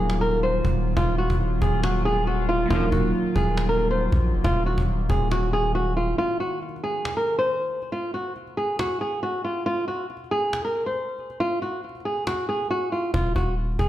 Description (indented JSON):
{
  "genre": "hip hop, trap",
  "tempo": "138 BPM",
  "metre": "4/4",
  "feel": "half-time",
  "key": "Eb dorian",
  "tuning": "A4 = 436 Hz",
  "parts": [
    { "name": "flamenco guitar", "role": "melody", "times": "0.0-13.9 s", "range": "F4 to C5", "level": "-25 LUFS", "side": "equal", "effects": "low-pass filter" },
    { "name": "glassy digital keys", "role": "accompaniment", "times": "0.0-6.2 s", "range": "Gb3 to Bb4", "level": "-30 LUFS", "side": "right 2 dB", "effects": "chorus, low-pass filter" },
    { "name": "deep dark ambient pad", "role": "sustained chords", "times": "0.0-6.1 s", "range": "Eb3 to F4", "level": "-31 LUFS", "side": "equal", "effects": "chorus, built-in reverb" },
    { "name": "long sustained 808-style bass", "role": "bass", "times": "0.0-6.1, 13.1-13.9 s", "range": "Eb1 to Bb1", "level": "-24 LUFS", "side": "equal", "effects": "none" },
    { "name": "cajon", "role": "drums", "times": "0.0-13.9 s", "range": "none", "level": "-30 LUFS", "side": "equal", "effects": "none" },
    { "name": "mellow brass ensemble", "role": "stabs", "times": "2.7-2.8 s", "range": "Bb1 to F3", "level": "-31 LUFS", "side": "left 4 dB", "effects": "none" }
  ],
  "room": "studio reverb",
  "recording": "played on a big sound system in a bare room, stone room reverb",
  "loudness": "-22 LUFS",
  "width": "side -13 dB against mid",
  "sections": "0.0-6.2 A section; 6.2-13.9 B section",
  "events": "break 6.2-13.1",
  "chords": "0.0 Ebmadd9; 6.2 N.C.; 13.1 Ebmadd9"
}